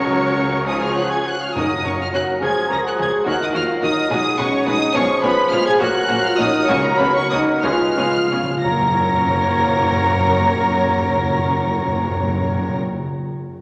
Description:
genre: quick classical-period movement for symphony orchestra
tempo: 57-72 BPM (dotted quarters)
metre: 6/8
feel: rubato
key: F# major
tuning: A4 = 440 Hz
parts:
  - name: rich studio violin section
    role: melody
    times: 0.0-12.8 s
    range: A#5 to A#6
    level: -26 LUFS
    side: equal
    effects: none
  - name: mellow hollow silver concert flute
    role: second line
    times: 0.0-12.8 s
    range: A#4 to A#5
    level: -26 LUFS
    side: equal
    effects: none
  - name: rich studio violin section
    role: second line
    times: 0.0-12.8 s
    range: F#4 to C#5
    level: -29 LUFS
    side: equal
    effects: none
  - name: warm clarinet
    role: second line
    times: 0.0-12.8 s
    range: G#4 to C#5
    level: -29 LUFS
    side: equal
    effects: none
  - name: mellow bassoon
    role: accompaniment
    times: 0.0-12.8 s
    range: E#3 to G#3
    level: -28 LUFS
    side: equal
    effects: none
  - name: rich studio viola section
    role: accompaniment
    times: 0.0-12.8 s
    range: E#3 to A#4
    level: -32 LUFS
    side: equal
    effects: none
  - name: dark French horn section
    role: sustained chords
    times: 0.0-12.8 s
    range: A#3 to A#4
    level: -26 LUFS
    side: equal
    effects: none
  - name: rich symphonic double bass section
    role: bass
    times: 0.0-12.8 s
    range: F#1 to D#2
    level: -34 LUFS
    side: equal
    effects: none
  - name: warm studio cello section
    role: bass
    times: 0.0-12.8 s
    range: F#2 to D#3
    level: -32 LUFS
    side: equal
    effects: none
  - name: timpani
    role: percussion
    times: 0.0-2.4, 6.7-12.8 s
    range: F#2 to C#3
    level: -27 LUFS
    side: equal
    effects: none
room: wet concert hall reverb, RT60 2.2 s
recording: none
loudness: -18 LUFS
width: mono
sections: 0.0-8.6 A section; 8.6-12.6 B section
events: slowing down 4.1-8.6; timpani fill 7.6-8.6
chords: 0.0 F#/C#; 0.7 C#; 1.6 F#; 2.4 C#; 3.3 D#m; 4.1 G#m7; 5.0 C#7/B; 5.8 F#; 6.7 F#/C#; 7.6 C#7; 8.6 F#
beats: 0.67 | 1.56 2.42 | 3.27 4.11 | 4.95 5.81 | 6.69 7.63 | 8.65 9.63 | 10.62 11.60

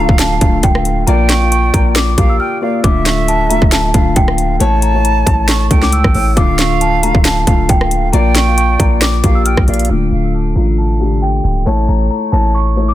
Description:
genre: hip hop, trap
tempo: 136 BPM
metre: 4/4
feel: half-time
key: D harmonic minor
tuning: A4 = 437 Hz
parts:
  - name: celesta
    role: melody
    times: 0.0-12.9 s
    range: G5 to F6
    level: -19 LUFS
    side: equal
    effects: low-pass filter, digital delay
  - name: hollow concert flute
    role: second line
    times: 0.0-9.9 s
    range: E5 to A5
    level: -20 LUFS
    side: right 6 dB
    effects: digital delay
  - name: dark concert grand piano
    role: accompaniment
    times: 0.0-12.9 s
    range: D3 to F5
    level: -18 LUFS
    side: left 4 dB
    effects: low-pass filter
  - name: warm 808-style bass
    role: bass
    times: 0.0-12.9 s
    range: C#1 to C#2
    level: -15 LUFS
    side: equal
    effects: none
  - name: trap drum kit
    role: drums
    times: 0.1-9.9 s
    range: handclaps, hi-hat, kick drum, rim click, snare drum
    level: -13 LUFS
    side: equal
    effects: none
room: small room ambience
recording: dense, heavily limited modern master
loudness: -10 LUFS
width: side -14 dB against mid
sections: 0.0-9.9 A section; 9.9-12.9 B section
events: break 2.4-2.8; filter sweep 9.9-12.9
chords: 0.0 Dm; 1.1 Bb; 2.8 Dm; 4.6 A; 6.4 Dm; 8.1 Bb; 9.9 Dm; 11.7 A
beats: 0.19 0.63 | 1.07 1.52 1.96 2.40 | 2.84 3.28 3.72 4.16 | 4.60 5.04 5.49 5.93 | 6.37 6.81 7.25 7.69 | 8.13 8.57 9.02 9.46 | 9.90 10.34 10.78 11.22 | 11.66 12.10 12.54

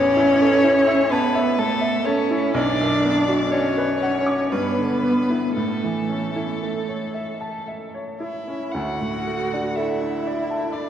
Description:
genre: classical, slow romantic movement for piano trio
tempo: 55-64 BPM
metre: 3/4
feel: rubato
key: unclear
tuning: A4 = 441 Hz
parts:
  - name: rich violin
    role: melody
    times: 0.0-10.9 s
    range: A4 to F#5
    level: -24 LUFS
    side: left 4 dB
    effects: none
  - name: rich cello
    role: second line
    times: 0.0-10.9 s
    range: A3 to F#4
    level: -23 LUFS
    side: right 2 dB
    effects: none
  - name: bright baby grand piano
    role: accompaniment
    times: 0.0-10.9 s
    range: A1 to D6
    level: -24 LUFS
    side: right 1 dB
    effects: none
room: wet church reverb, RT60 3.2 s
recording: worn, warbling old tape, cassette tape, warbly pitch drift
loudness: -19 LUFS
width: side -10 dB against mid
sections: 0.0-10.9 A section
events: none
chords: 0.0 A; 2.6 Bm; 4.5 G6; 5.6 A; 8.7 D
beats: 0.65 1.59 | 2.55 3.52 4.52 | 5.56 6.62 7.67 | 8.74 9.77 10.74

